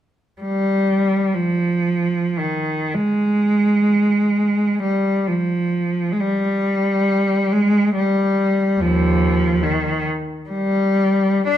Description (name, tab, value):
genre	classical, free, expressive piece for unaccompanied cello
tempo	49-74 BPM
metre	3/4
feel	rubato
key	unclear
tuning	A4 = 440 Hz
part	clear cello	solo	0.4-11.6 s	Eb2 to D4	-16 LUFS	equal	none
room	moderate recital hall reverb, RT60 1.5 s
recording	close, detailed microphones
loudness	-16 LUFS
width	side -11 dB against mid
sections	0.4-11.6 A section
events	none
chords	none